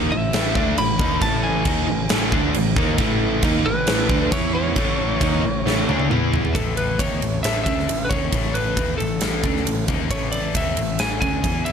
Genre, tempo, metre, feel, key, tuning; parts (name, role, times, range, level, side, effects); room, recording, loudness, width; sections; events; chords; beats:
quiet-loud alternative rock; 135 BPM; 4/4; straight; A major; A4 = 439 Hz
crunchy overdriven guitar; riff; 0.0-6.5 s; A2 to E4; -26 LUFS; right 12 dB
crunchy overdriven guitar; riff; 0.0-6.5 s; A2 to E4; -26 LUFS; equal
distorted electric guitar; riff; 0.0-11.7 s; A2 to E4; -28 LUFS; left 14 dB; distortion
fuzz picked electric bass; bass; 0.0-11.7 s; A1 to E2; -26 LUFS; equal; overdrive
lightly driven lead guitar; melody; 0.1-11.7 s; A4 to B5; -26 LUFS; equal; slapback echo
huge arena drum kit; drums; 0.3-11.7 s; crash cymbal, kick drum, ride cymbal, snare drum, toms; -23 LUFS; equal
picked steel-string acoustic guitar; arpeggios; 6.6-11.7 s; A2 to E4; -31 LUFS; right 10 dB
light reverb; -18 LUFS; side -7 dB against mid
0.0-6.5 A section; 6.5-11.7 B section
drum fill 5.7-6.5
0.0 A5; 4.3 E5; 4.8 A; 6.1 E5; 6.5 A
0.34 0.78 | 1.22 1.67 2.11 2.55 | 3.00 3.44 3.88 4.32 | 4.77 5.21 5.66 6.10 | 6.54 6.99 7.44 7.88 | 8.33 8.77 9.22 9.67 | 10.11 10.56 11.01 11.45